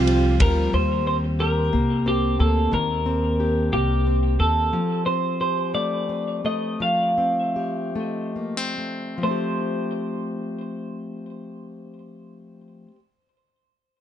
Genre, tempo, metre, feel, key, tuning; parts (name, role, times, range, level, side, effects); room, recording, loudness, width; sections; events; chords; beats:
six-eight pop ballad; 44-60 BPM (dotted quarters); 6/8; straight; F mixolydian; A4 = 440 Hz
twelve-string electric guitar; melody; 0.0-12.9 s; F4 to F5; -24 LUFS; right 1 dB; digital delay
dark French horn section; second line; 0.0-0.7 s; C4; -27 LUFS; right 2 dB; digital delay
fingerpicked plugged-in steel-string acoustic guitar; accompaniment; 0.0-13.0 s; Eb3 to G4; -26 LUFS; left 2 dB
rich studio string section; sustained chords; 0.0-0.7 s; F3 to C5; -32 LUFS; right 2 dB
upright bass; bass; 0.0-4.7 s; C2 to Eb2; -22 LUFS; equal
loose indie drum kit; drums; 0.1-0.6 s; kick drum, ride cymbal; -26 LUFS; equal
moderate studio ambience, RT60 0.5 s; nothing above 10.6 kHz; -20 LUFS; side -10 dB against mid
0.7-9.2 A section; 9.2-14.0 B section
slowing down 4.7-9.2
0.0 Fsus2; 0.7 Eb6; 4.7 Fadd9
| 0.73 1.73 | 2.73 3.73 | 4.72 5.74 | 6.80 7.95 | 9.22 10.57 | 11.92